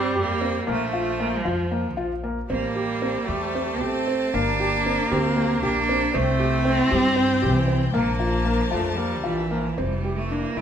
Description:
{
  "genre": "contemporary instrumental, chamber music in an uneven meter",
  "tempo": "231 BPM (eighths)",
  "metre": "7/8",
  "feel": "straight",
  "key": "unclear",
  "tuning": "A4 = 440 Hz",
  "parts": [
    { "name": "bright cello", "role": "melody", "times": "0.0-10.6 s", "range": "E3 to D4", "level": "-26 LUFS", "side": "right 4 dB", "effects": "none" },
    { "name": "warm viola", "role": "second line", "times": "0.0-10.6 s", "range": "E3 to C4", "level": "-26 LUFS", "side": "equal", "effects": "none" },
    { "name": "felt-muted upright piano", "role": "arpeggios", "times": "0.0-10.6 s", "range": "Bb3 to G4", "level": "-27 LUFS", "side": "left 1 dB", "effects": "none" },
    { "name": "upright bass", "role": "bass", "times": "0.0-10.6 s", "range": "F1 to G2", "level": "-28 LUFS", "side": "left 1 dB", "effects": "none" },
    { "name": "rich studio string section", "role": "sustained chords", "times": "2.5-9.8 s", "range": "D4 to A5", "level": "-32 LUFS", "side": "left 5 dB", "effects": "none" }
  ],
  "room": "moderate recital hall reverb, RT60 1.4 s",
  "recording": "minimal, uncompressed stereo recording",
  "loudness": "-21 LUFS",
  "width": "side -8 dB against mid",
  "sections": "0.0-9.8 A section",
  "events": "none",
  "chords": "0.0 C5; 0.7 Bb5; 2.5 Am7; 4.3 Gmadd9; 6.1 C; 7.9 Bbmaj7; 9.8 Fmaj7sus2"
}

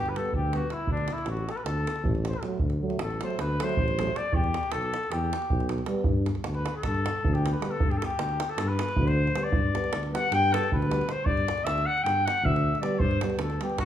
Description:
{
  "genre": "balkan folk, Balkan brass band",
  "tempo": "312 BPM (eighths)",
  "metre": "9/8",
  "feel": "straight",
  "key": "G major",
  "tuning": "A4 = 440 Hz",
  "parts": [
    { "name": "warm trumpet", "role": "melody", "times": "0.0-13.8 s", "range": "D4 to G5", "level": "-29 LUFS", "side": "left 2 dB", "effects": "none" },
    { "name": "dark tuba", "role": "bass", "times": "0.0-13.8 s", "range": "G1 to G2", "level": "-29 LUFS", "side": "equal", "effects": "none" },
    { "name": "mellow euphonium", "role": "accompaniment", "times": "0.1-13.8 s", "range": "F#3 to G3", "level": "-35 LUFS", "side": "right 5 dB", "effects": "none" },
    { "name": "davul", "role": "percussion", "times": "0.1-13.8 s", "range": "none", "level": "-31 LUFS", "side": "right 2 dB", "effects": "none" },
    { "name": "warm euphonium", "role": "accompaniment", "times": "0.2-13.8 s", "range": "A3 to B3", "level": "-36 LUFS", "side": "left 3 dB", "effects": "none" }
  ],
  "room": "wet large studio reverb, RT60 1.1 s",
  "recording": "band playing live in one room",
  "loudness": "-24 LUFS",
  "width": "side -10 dB against mid",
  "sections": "0.0-13.8 A section",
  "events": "trumpet solo 0.0-13.8",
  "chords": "0.0 G; 0.9 D; 4.3 Em; 6.1 G"
}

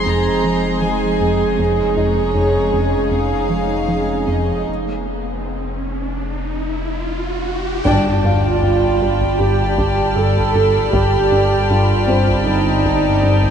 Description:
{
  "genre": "cinematic, suspense film score",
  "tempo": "78 BPM",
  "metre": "4/4",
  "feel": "straight",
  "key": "unclear",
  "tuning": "A4 = 442 Hz",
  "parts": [
    { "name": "warm chamber violin section", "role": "melody", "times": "0.0-13.5 s", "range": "Db5 to Bb5", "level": "-28 LUFS", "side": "left 2 dB", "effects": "none" },
    { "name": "warm symphonic violin section", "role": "second line", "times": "0.0-13.5 s", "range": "Eb4 to G5", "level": "-22 LUFS", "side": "left 2 dB", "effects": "none" },
    { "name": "dark chamber viola section", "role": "accompaniment", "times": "0.0-13.5 s", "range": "Ab3 to A4", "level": "-19 LUFS", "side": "right 4 dB", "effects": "none" },
    { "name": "warm chamber cello section", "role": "bass", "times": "0.0-13.5 s", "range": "F2 to G2", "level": "-25 LUFS", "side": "left 1 dB", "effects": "none" },
    { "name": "saturated sub bass", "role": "drone", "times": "0.0-13.5 s", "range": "F1 to G1", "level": "-26 LUFS", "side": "left 1 dB", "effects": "lush chorus" },
    { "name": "warm chamber violin section", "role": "texture", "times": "0.0-1.2, 7.9-13.5 s", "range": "A5 to C7", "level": "-28 LUFS", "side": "left 2 dB", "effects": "none" },
    { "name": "rubbery square bass", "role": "riff", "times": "0.1-13.5 s", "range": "F2 to F3", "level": "-21 LUFS", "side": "equal", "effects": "none" },
    { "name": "riser and sub drop", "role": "sound effects", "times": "4.6-10.9 s", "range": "none", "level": "-27 LUFS", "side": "equal", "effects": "none" },
    { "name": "warm baby grand piano", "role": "texture", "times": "2.0-13.5 s", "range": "C4 to F5", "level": "-29 LUFS", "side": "left 2 dB", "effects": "none" },
    { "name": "dark chamber double bass section", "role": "bass", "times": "7.9-13.5 s", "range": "G1", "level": "-25 LUFS", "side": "left 1 dB", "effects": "none" },
    { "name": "solo taiko drums", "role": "drums", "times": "7.9-13.5 s", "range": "none", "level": "-27 LUFS", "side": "left 1 dB", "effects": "none" }
  ],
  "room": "wet huge ambient reverb, RT60 7.9 s",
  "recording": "in a vast, echoing space, nothing above 10.4 kHz",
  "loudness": "-15 LUFS",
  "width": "side -8 dB against mid",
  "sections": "0.0-7.9 A section; 7.9-13.5 B section",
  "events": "riser 4.6-7.9; break 4.7-7.9; band accent 7.9-8.6; impact 7.9-10.9",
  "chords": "0.0 Fm7; 1.6 Dbsus2/F; 4.7 N.C.; 7.9 Gsus2"
}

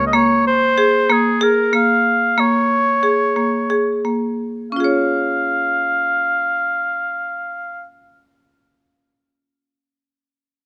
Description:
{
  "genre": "contemporary instrumental, contemporary",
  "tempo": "175-189 BPM (eighths)",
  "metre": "7/8",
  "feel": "straight",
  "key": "Db major",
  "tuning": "A4 = 440 Hz",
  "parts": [
    { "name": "warm oboe", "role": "melody", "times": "0.0-7.8 s", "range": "Ab4 to F5", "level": "-20 LUFS", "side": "equal", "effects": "none" },
    { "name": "marimba with hard mallets", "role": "arpeggios", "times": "0.1-8.6 s", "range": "Bb3 to Db5", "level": "-20 LUFS", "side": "equal", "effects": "none" }
  ],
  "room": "light reverb",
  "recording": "close, detailed microphones",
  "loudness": "-17 LUFS",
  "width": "mono",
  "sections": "0.0-4.7 A section; 4.7-7.1 B section",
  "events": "slowing down 0.1-4.7",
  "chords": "0.0 Db5; 4.7 Db"
}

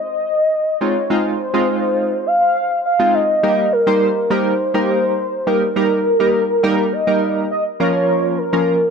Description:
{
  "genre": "pop",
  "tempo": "103 BPM",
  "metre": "4/4",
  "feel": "straight",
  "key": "unclear",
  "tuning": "A4 = 441 Hz",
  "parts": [
    { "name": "warm velvety synth lead", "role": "melody", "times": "0.0-8.9 s", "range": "Bb4 to F5", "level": "-17 LUFS", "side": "equal", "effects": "chorus, ping-pong delay" },
    { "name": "chorused retro synth keys", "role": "accompaniment", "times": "0.8-8.8 s", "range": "F3 to C5", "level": "-18 LUFS", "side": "right 1 dB", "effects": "tremolo" }
  ],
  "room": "light reverb",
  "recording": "none",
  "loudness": "-14 LUFS",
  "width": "side -6 dB against mid",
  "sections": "0.0-3.4 A section; 3.4-8.9 B section",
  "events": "build-up 0.0-3.4; drop 3.4-8.9",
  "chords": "0.0 Ab; 3.4 Eb; 7.8 Bbm"
}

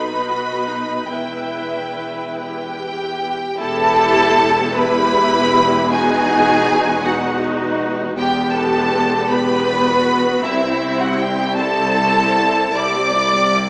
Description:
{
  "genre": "classical, slow romantic movement for string orchestra",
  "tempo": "46-54 BPM (dotted quarters)",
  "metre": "6/8",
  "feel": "rubato",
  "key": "E minor",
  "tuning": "A4 = 442 Hz",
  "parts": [
    { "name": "bright studio violin section", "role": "melody", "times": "0.0-13.7 s", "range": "E5 to D6", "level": "-22 LUFS", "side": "equal", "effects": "none" },
    { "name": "rich symphonic violin section", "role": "second line", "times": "0.0-13.7 s", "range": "E4 to E5", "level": "-23 LUFS", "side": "equal", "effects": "none" },
    { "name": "rich symphonic viola section", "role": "accompaniment", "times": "0.0-13.7 s", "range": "G3 to B4", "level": "-23 LUFS", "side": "equal", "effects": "none" },
    { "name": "clear chamber double bass section", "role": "bass", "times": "0.0-13.7 s", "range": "E1 to C2", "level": "-32 LUFS", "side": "equal", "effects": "none" },
    { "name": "rich symphonic cello section", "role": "bass", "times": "0.0-13.7 s", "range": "C2 to B2", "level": "-26 LUFS", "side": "equal", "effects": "none" }
  ],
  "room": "moderate scoring stage reverb, RT60 2.1 s",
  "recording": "small speaker sound",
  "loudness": "-17 LUFS",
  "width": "mono",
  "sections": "0.0-3.6 A section; 3.6-13.7 B section",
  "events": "none",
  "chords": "0.0 B; 1.1 Em; 5.9 Emaj9; 8.2 Em; 10.4 Am/C; 12.7 C"
}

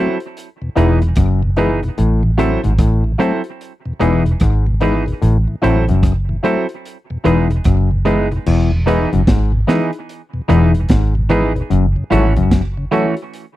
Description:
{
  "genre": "roots reggae",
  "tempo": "74 BPM",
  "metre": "4/4",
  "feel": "swing 63% on 16ths",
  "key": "E major",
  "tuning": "A4 = 442 Hz",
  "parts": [
    { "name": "mellow tonewheel organ", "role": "accompaniment", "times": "0.0-13.1 s", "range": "E2 to E4", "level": "-22 LUFS", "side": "left 1 dB", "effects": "slow rotary speaker" },
    { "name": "semi-hollow electric guitar", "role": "accompaniment", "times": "0.0-13.1 s", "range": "E3 to A4", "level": "-20 LUFS", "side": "right 6 dB", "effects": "tape echo" },
    { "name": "clear upright piano", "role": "stabs", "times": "0.0-13.1 s", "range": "D#4 to C#5", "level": "-20 LUFS", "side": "left 4 dB", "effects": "none" },
    { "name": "crunchy breakbeat drum kit", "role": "drums", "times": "0.2-13.6 s", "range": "crash cymbal, hi-hat, kick drum, rim click, snare drum", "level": "-16 LUFS", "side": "equal", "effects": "none" },
    { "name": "overdriven clav", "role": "riff", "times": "0.8-12.6 s", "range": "E2 to A2", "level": "-18 LUFS", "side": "left 5 dB", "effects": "none" },
    { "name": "vintage muted fingered electric bass", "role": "bass", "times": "0.8-12.9 s", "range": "E1 to A1", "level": "-15 LUFS", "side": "equal", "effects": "none" }
  ],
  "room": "little or no reverb",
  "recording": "dry, close 1970s-style studio recording",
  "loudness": "-13 LUFS",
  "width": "side -15 dB against mid",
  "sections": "0.0-8.5 A section; 8.5-13.6 B section",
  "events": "none",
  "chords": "0.4 Emaj7; 2.0 Am6; 3.6 Emaj7; 5.2 Am6; 6.8 Emaj7; 11.7 F#m7"
}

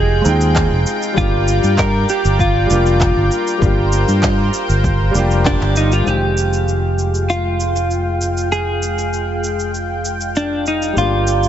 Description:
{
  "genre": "sunset chillout",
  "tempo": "98 BPM",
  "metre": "4/4",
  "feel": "straight",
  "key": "F dorian",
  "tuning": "A4 = 440 Hz",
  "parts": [
    { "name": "clean electric guitar", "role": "melody", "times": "0.0-11.5 s", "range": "D4 to Bb4", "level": "-20 LUFS", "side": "right 1 dB", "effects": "analog chorus, digital delay" },
    { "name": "warm concert grand piano", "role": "accompaniment", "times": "0.0-11.5 s", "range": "Eb3 to G5", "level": "-23 LUFS", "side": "left 1 dB", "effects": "auto-pan, digital delay" },
    { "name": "lush unison pad", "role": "sustained chords", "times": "0.0-11.5 s", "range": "Ab3 to G5", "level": "-23 LUFS", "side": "equal", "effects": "chorus" },
    { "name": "fingered electric bass", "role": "bass", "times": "0.0-11.5 s", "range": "F1 to G2", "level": "-17 LUFS", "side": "equal", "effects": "none" },
    { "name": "electronic shaker and handclaps", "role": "drums", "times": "0.3-11.5 s", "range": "none", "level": "-25 LUFS", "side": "right 1 dB", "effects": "overdrive" },
    { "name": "electronic kick drum", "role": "drums", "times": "0.6-5.6 s", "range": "none", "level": "-20 LUFS", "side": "equal", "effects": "overdrive" }
  ],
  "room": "light reverb",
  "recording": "nothing above 7.8 kHz",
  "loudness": "-14 LUFS",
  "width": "side -10 dB against mid",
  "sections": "0.0-6.1 A section; 6.1-11.5 B section",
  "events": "band accent 5.5-5.8",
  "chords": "0.0 Fm9; 1.2 Gm7; 6.1 Fm9; 11.0 Gm7"
}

